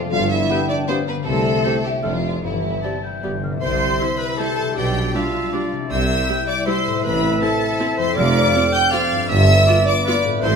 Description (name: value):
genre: cinematic, playful, whimsical film cue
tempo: 158 BPM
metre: 3/4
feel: straight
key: C major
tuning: A4 = 435 Hz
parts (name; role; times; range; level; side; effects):
- mellow hollow large flute ensemble; second line; 0.0-10.6 s; F4 to G5; -27 LUFS; right 1 dB; none
- warm French horn section; sustained chords; 0.0-10.6 s; E3 to F4; -27 LUFS; left 3 dB; none
- concert harp; arpeggios; 0.0-10.6 s; F2 to C6; -26 LUFS; left 6 dB; none
- rich studio violin section; second line; 0.1-10.6 s; E4 to G5; -26 LUFS; left 1 dB; none
- rich studio cello section; bass; 0.1-10.6 s; F2 to C3; -27 LUFS; right 1 dB; none
- rich studio double bass section; bass; 0.1-10.6 s; F1 to C2; -24 LUFS; right 2 dB; none
- warm tuba; bass; 0.1-10.6 s; F1 to C2; -28 LUFS; right 4 dB; none
- clear studio violin section; melody; 0.5-10.6 s; D5 to G6; -24 LUFS; left 2 dB; none
- mellow clarinet; second line; 0.5-10.6 s; B3 to G5; -26 LUFS; right 2 dB; none
- warm oboe; second line; 0.5-10.6 s; B4 to A5; -28 LUFS; right 1 dB; none
- rich studio viola section; accompaniment; 0.5-10.5 s; G3 to A4; -28 LUFS; right 2 dB; none
- warm bassoon; accompaniment; 0.5-3.4 s; G3 to C4; -33 LUFS; right 3 dB; none
room: wet recital hall reverb, RT60 1.4 s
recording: minimal, uncompressed stereo recording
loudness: -16 LUFS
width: side -6 dB against mid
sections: 0.0-3.6 A section; 3.6-10.6 B section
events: none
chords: 0.1 G7; 1.3 C; 2.0 Dm/F; 2.4 C/G; 3.2 G; 3.6 C; 4.8 G7/B; 5.9 C; 7.0 Am; 8.2 Dm7/F; 9.3 G7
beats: | 0.12 0.49 0.88 | 1.26 1.64 2.03 | 2.43 2.83 3.23 | 3.62 4.00 4.38 | 4.77 5.15 5.53 | 5.91 6.29 6.67 | 7.04 7.42 7.79 | 8.16 8.54 8.92 | 9.29 9.67 10.05 | 10.42